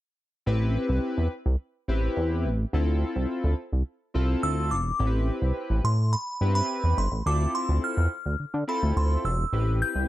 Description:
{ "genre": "funk", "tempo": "106 BPM", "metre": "4/4", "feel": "straight", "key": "A minor", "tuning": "A4 = 440 Hz", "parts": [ { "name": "chorused polysynth", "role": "accompaniment", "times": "0.5-10.1 s", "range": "B3 to B4", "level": "-31 LUFS", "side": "left 1 dB", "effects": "none" }, { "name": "chorused synth bass", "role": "bass", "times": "0.5-10.1 s", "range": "E1 to D3", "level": "-24 LUFS", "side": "equal", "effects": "none" }, { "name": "delicate synth tine bell", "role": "melody", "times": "4.4-10.1 s", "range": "B5 to G6", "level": "-30 LUFS", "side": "right 1 dB", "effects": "chorus, phaser, tremolo" } ], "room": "digital ambience", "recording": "dark, warm production", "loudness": "-24 LUFS", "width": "side -15 dB against mid", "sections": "0.5-5.0 A section; 5.0-10.1 B section", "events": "none", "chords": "0.5 Am9; 2.7 Dm9; 5.0 Am9; 7.3 Dm9; 9.5 Am9" }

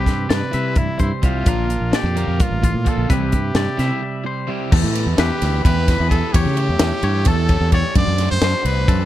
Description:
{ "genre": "math rock and midwest emo", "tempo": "259 BPM (eighths)", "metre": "7/8", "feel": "straight", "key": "unclear", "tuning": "A4 = 440 Hz", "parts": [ { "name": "bright trumpet", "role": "melody", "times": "0.0-9.1 s", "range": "E4 to D5", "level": "-25 LUFS", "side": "equal", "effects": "none" }, { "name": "twangy electric guitar", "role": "accompaniment", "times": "0.0-4.7 s", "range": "G2 to G4", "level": "-26 LUFS", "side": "right 5 dB", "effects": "wide subtle chorus" }, { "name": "twangy electric guitar", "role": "arpeggios", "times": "0.0-9.1 s", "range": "F4 to E5", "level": "-28 LUFS", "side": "left 7 dB", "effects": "spring reverb, tape echo" }, { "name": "overdriven electric guitar", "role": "riff", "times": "0.0-9.1 s", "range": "C3 to C#5", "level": "-26 LUFS", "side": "right 1 dB", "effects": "none" }, { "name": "fingered electric bass", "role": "bass", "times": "0.0-9.1 s", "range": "A1 to C#3", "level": "-20 LUFS", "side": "equal", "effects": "none" }, { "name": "crisp fusion drum kit", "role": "drums", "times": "0.1-9.0 s", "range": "crash cymbal, hi-hat, kick drum, ride cymbal, snare drum", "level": "-19 LUFS", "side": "equal", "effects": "none" } ], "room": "little or no reverb", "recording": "dark, warm production", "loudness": "-16 LUFS", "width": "side -13 dB against mid", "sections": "0.0-4.7 A section; 4.7-9.1 B section", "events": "break 4.0-4.7", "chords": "0.0 Cmaj7; 1.5 Bbmaj7; 3.1 Cmaj7; 4.7 Em7; 6.3 A7/E; 8.0 D6" }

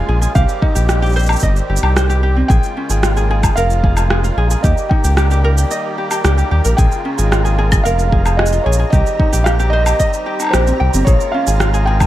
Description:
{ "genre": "folktronica", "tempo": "112 BPM", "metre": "4/4", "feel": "straight", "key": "Bb dorian", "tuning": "A4 = 438 Hz", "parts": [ { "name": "felt-muted upright piano", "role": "melody", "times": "0.0-12.1 s", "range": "C5 to Ab5", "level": "-22 LUFS", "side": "right 1 dB", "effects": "digital delay" }, { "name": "musette accordion", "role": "sustained chords", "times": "0.0-12.1 s", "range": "Db3 to G4", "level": "-25 LUFS", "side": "right 1 dB", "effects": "none" }, { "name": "ukulele", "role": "arpeggios", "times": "0.0-12.1 s", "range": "C4 to G5", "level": "-22 LUFS", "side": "equal", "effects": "digital delay" }, { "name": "round analog bass", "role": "bass", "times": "0.0-12.1 s", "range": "F1 to Eb2", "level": "-14 LUFS", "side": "equal", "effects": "none" }, { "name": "electronic cabasa, rim click and woodblock", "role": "drums", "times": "0.2-12.1 s", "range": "none", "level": "-20 LUFS", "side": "equal", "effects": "none" }, { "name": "electronic kick drum", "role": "drums", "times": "0.4-12.1 s", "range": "none", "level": "-15 LUFS", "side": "equal", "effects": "none" }, { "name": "flickering grainy texture", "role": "texture", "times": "3.8-12.1 s", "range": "Bb5", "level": "-31 LUFS", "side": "right 2 dB", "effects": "built-in reverb" } ], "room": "digital ambience", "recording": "dark, warm production", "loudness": "-12 LUFS", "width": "side -14 dB against mid", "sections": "0.0-12.1 A section", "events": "none", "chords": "0.4 Cm; 2.5 Bbm7; 4.6 Eb; 6.8 Bbm7; 8.9 Cm; 11.1 Bbm7" }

